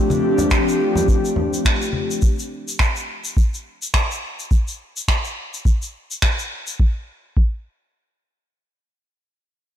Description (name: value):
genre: sunset chillout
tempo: 105 BPM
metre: 4/4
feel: swing 56% on 16ths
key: unclear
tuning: A4 = 438 Hz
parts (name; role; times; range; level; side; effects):
- airy breathy pad; sustained chords; 0.0-2.2 s; F3 to G4; -20 LUFS; left 1 dB; chorus
- shaker and finger snaps; drums; 0.1-6.8 s; none; -24 LUFS; equal; soft clipping on snare
- congas; percussion; 0.1-2.1 s; none; -25 LUFS; left 1 dB; none
- electronic kick drum; drums; 0.5-7.6 s; none; -17 LUFS; equal; none
room: light reverb, studio reverb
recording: blown-out, overdriven recording, overdrive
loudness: -18 LUFS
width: side -10 dB against mid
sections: 0.0-6.8 A section; 6.8-9.1 B section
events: none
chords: 0.0 G9sus4; 2.2 N.C.